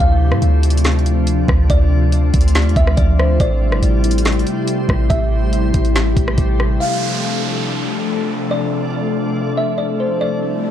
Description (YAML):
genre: hip hop, atmospheric cloud-rap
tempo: 141 BPM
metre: 4/4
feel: half-time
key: unclear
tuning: A4 = 437 Hz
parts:
  - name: kalimba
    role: melody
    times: 0.0-10.7 s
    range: C5 to F5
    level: -24 LUFS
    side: right 1 dB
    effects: low-pass filter, tape echo
  - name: glassy FM pad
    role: sustained chords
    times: 0.0-10.7 s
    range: C3 to A4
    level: -20 LUFS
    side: left 2 dB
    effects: ensemble chorus, built-in reverb, sidechain pumping
  - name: clean 808-style bass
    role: bass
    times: 0.0-6.8 s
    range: G1 to A2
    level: -15 LUFS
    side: equal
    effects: none
  - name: smooth R&B drum kit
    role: drums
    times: 0.0-6.7 s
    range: hi-hat, kick drum, rim click, snare drum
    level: -18 LUFS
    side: equal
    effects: none
  - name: backwards swelling texture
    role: texture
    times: 0.0-10.7 s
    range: A3 to D5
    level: -31 LUFS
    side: equal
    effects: built-in reverb
  - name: downlifter and noise sweep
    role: sound effects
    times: 6.8-10.7 s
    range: none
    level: -27 LUFS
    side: right 2 dB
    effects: none
room: little or no reverb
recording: dry, gritty hardware recording, cassette tape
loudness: -14 LUFS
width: side -10 dB against mid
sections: 0.0-6.8 A section; 6.8-10.7 B section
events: noise sweep 10.4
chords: 0.0 Dm7; 3.4 Am7; 6.8 Dm7